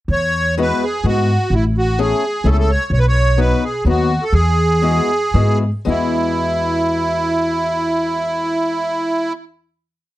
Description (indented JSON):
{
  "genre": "musette waltz",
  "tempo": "111-130 BPM",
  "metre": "3/4",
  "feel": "straight",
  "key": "E major",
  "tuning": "A4 = 440 Hz",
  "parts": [
    { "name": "accordion", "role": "melody", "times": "0.1-9.3 s", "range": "E4 to C#5", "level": "-18 LUFS", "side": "right 1 dB", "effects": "light tremolo tuning, slapback echo" },
    { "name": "upright bass", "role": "bass", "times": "0.1-9.3 s", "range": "A1 to G#2", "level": "-17 LUFS", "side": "equal", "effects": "none" },
    { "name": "fingerpicked swing-style acoustic guitar", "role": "accompaniment", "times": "0.6-9.3 s", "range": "F#3 to G#4", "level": "-22 LUFS", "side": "left 6 dB", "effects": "none" }
  ],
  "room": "little or no reverb",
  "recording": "dry, close 1970s-style studio recording",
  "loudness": "-15 LUFS",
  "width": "side -15 dB against mid",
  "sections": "0.1-5.9 A section; 5.9-9.1 final chord",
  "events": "slowing down 2.9-5.9",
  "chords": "0.1 Eadd9; 1.5 Amaj7; 2.9 B; 4.3 Eadd9"
}